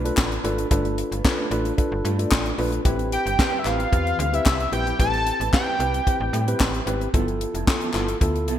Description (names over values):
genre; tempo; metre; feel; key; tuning
early-eighties boogie funk; 112 BPM; 4/4; straight; A minor; A4 = 440 Hz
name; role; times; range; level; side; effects
tine electric piano; accompaniment; 0.0-8.5 s; E3 to D5; -27 LUFS; left 1 dB; none
mellow electric guitar; riff; 0.0-8.6 s; F3 to C5; -33 LUFS; right 5 dB; wide subtle chorus
slap-like FM bass; bass; 0.0-8.6 s; F1 to A2; -27 LUFS; equal; none
tight funk drum kit; drums; 0.1-8.6 s; handclaps, hi-hat, kick drum, snare drum; -23 LUFS; equal; none
group handclap; percussion; 0.2-8.1 s; none; -30 LUFS; left 3 dB; none
fat analog lead; melody; 3.1-6.6 s; E5 to A5; -24 LUFS; equal; phaser, ping-pong delay
room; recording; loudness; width
moderate lush hall reverb, RT60 1.8 s, small room ambience; bright 1980s-style digital production; -20 LUFS; side -10 dB against mid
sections
0.0-8.6 A section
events
none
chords
0.0 G9; 2.9 Am9; 7.1 G13